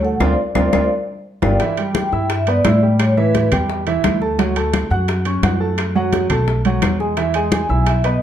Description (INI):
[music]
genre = Afro-Cuban jazz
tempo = 172 BPM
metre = 4/4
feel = straight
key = unclear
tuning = A4 = 439 Hz
[part]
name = vibraphone with medium mallets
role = melody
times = 0.0-3.5, 7.5-8.2 s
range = B4 to G#5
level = -21 LUFS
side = left 2 dB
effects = plate reverb
[part]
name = clear baby grand piano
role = accompaniment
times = 0.0-8.2 s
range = E3 to F#6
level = -20 LUFS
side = right 3 dB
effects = none
[part]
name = upright bass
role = bass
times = 0.0-8.2 s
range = G1 to A2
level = -19 LUFS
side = equal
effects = none
[part]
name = bongos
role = percussion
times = 0.2-8.2 s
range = none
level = -28 LUFS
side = left 7 dB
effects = none
[part]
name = claves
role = percussion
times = 0.2-7.7 s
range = none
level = -32 LUFS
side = left 5 dB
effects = none
[part]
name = congas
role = percussion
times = 0.2-8.2 s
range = none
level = -24 LUFS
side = left 3 dB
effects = none
[part]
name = timbales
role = percussion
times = 0.2-8.2 s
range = none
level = -27 LUFS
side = right 7 dB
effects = none
[sound]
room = moderate large studio reverb, RT60 0.8 s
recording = dark, warm production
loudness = -15 LUFS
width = side -10 dB against mid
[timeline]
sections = 0.0-1.6 A section; 1.6-8.2 B section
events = band accent 0.2-1.6; drum fill 0.7-1.6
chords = 0.2 Dm7; 0.9 G5; 1.6 G69; 3.0 Asus2; 4.4 Dmaj7; 5.8 F#m; 6.5 B5; 7.2 E